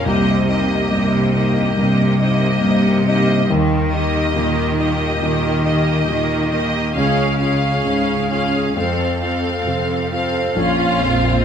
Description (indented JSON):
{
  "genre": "cinematic, emotional film score for orchestra",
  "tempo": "69 BPM",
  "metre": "4/4",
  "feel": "rubato",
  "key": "unclear",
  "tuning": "A4 = 441 Hz",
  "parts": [
    { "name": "clear symphonic violin section", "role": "melody", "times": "0.0-11.4 s", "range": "Eb5 to F5", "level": "-23 LUFS", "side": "equal", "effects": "none" },
    { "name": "clear studio viola section", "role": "accompaniment", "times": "0.0-11.4 s", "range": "Bb3 to A4", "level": "-22 LUFS", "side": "right 1 dB", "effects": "none" },
    { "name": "warm grand piano", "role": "accompaniment", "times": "0.0-11.4 s", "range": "Bb1 to F4", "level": "-20 LUFS", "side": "left 3 dB", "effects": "none" },
    { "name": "rich symphonic cello section", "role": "bass", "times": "0.1-11.4 s", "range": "F2 to Eb3", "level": "-21 LUFS", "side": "right 3 dB", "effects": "none" },
    { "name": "clear symphonic violin section", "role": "second line", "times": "10.6-11.4 s", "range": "F4", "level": "-21 LUFS", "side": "left 2 dB", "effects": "none" },
    { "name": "rich symphonic double bass section", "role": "bass", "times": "10.6-11.4 s", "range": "Bb1", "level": "-22 LUFS", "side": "right 4 dB", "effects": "none" }
  ],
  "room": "moderate scoring stage reverb, RT60 1.8 s",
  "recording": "none",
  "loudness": "-15 LUFS",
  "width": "side -8 dB against mid",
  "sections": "0.0-10.6 A section",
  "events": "none",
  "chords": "0.1 Cm7; 3.5 Eb; 7.0 Db; 8.8 F; 10.6 Bbm",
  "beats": "| 0.06 0.92 1.77 2.64 | 3.50 4.35 5.22 6.09 | 6.96 7.85 8.76 9.67 | 10.57 11.45"
}